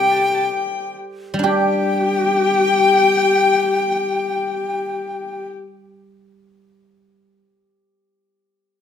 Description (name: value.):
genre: chinese traditional, Chinese chamber ensemble.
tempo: 61 BPM.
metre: 4/4.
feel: straight.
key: unclear.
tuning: A4 = 440 Hz.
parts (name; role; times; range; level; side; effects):
breathy bright large dizi; melody; 0.0-5.5 s; G5; -20 LUFS; left 1 dB; none.
bright erhu; second line; 0.0-5.5 s; G5 to A5; -23 LUFS; left 6 dB; none.
hammered dulcimer; second line; 0.0-5.5 s; G4 to D5; -29 LUFS; right 6 dB; none.
rich horsehead fiddle; second line; 0.0-5.5 s; G4; -20 LUFS; left 5 dB; none.
guzheng; accompaniment; 0.0-7.4 s; C3 to G4; -25 LUFS; right 2 dB; none.
room: moderate recital hall reverb, RT60 1.3 s.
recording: close, detailed microphones.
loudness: -16 LUFS.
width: side -8 dB against mid.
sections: 0.0-1.4 A section; 1.4-5.4 B section.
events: slowing down 0.0-1.4.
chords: none.